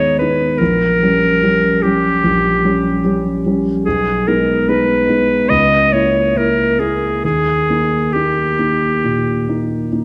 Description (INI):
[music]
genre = classical, romantic duo for clarinet and grand piano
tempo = 66-75 BPM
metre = 4/4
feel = rubato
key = unclear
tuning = A4 = 441 Hz
[part]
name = clear clarinet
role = melody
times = 0.0-9.9 s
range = G4 to D#5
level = -18 LUFS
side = equal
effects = none
[part]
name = dark grand piano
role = accompaniment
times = 0.0-10.0 s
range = Bb1 to E4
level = -19 LUFS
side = equal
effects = none
[sound]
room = wet concert hall reverb, RT60 1.7 s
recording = none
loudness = -15 LUFS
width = mono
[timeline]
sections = 0.0-10.0 A section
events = none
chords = 0.0 G#m; 0.6 Gdim/Bb; 3.9 G#m/B; 5.5 A#dim/C#; 7.2 D#